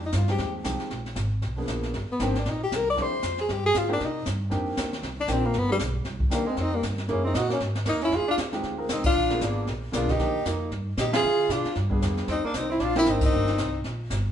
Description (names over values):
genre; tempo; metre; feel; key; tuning
jazz, small-group swing and bop; 232 BPM; 4/4; swing 59% on 8ths; C minor; A4 = 439 Hz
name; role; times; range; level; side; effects
warm tenor saxophone; melody; 0.0-13.8 s; G3 to D5; -26 LUFS; left 1 dB; none
upright bass; bass; 0.0-14.3 s; G1 to D3; -29 LUFS; equal; none
jazz brush drum kit; drums; 0.1-14.3 s; brushed snare drum, crash cymbal, hi-hat, kick drum, ride cymbal, snare drum; -31 LUFS; equal; none
warm grand piano; accompaniment; 0.3-13.5 s; F3 to Bb4; -32 LUFS; equal; none
breathy tenor saxophone; second line; 6.3-13.8 s; G3 to F4; -31 LUFS; right 3 dB; none
room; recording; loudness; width
wet stone room reverb, RT60 0.9 s; band playing live in one room, nothing above 11.0 kHz; -23 LUFS; side -9 dB against mid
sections
0.0-6.1 A section; 6.1-14.3 B section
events
tenor saxophone solo 0.0-6.1; band accent 9.0, 11.1, 13.2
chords
0.0 Fm9; 0.9 Bb7b9; 1.9 Ebmaj7; 3.0 Dm7b5; 3.5 G5; 4.0 Cm9; 5.5 G7b9; 6.1 Cm9; 7.1 F#13; 8.1 Fm9; 9.2 Bb7b9; 10.2 Ebmaj7; 11.2 Dm7b5; 11.8 G7b9; 12.3 Cm9